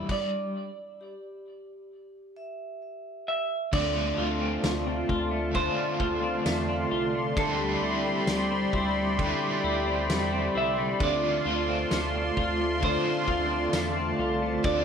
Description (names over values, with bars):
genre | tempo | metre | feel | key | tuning
dream pop | 66 BPM | 4/4 | straight | D dorian | A4 = 440 Hz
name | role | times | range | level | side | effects
semi-hollow electric guitar | melody | 0.0-14.8 s | A4 to E5 | -31 LUFS | right 3 dB | digital delay
overdriven semi-hollow guitar | accompaniment | 0.0-14.8 s | D3 to F4 | -32 LUFS | right 2 dB | tremolo, lush chorus
warm analog pad | sustained chords | 0.0-14.8 s | F4 to C6 | -29 LUFS | equal | chorus, tremolo
semi-hollow electric guitar | arpeggios | 0.0-14.8 s | D3 to F4 | -32 LUFS | left 4 dB | lush chorus, digital delay
chorused synth bass | bass | 0.0-14.8 s | C2 to E2 | -35 LUFS | equal | none
loose indie drum kit | drums | 0.1-14.8 s | crash cymbal, kick drum, ride cymbal, snare drum, tambourine | -32 LUFS | equal | none
vibraphone with medium hard mallets | texture | 1.0-7.6, 14.2-14.8 s | G4 to G5 | -41 LUFS | right 1 dB | digital delay
room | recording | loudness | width
wet studio reverb, RT60 0.6 s | none | -25 LUFS | side -7 dB against mid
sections
0.0-3.7 A section; 3.7-14.8 B section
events
none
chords
0.1 G5; 3.7 Dm7; 7.4 Am11/D; 11.0 Dm7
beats
| 0.09 1.00 1.91 2.82 | 3.73 4.64 5.55 6.46 | 7.37 8.28 9.18 10.09 | 11.00 11.91 12.82 13.73 | 14.64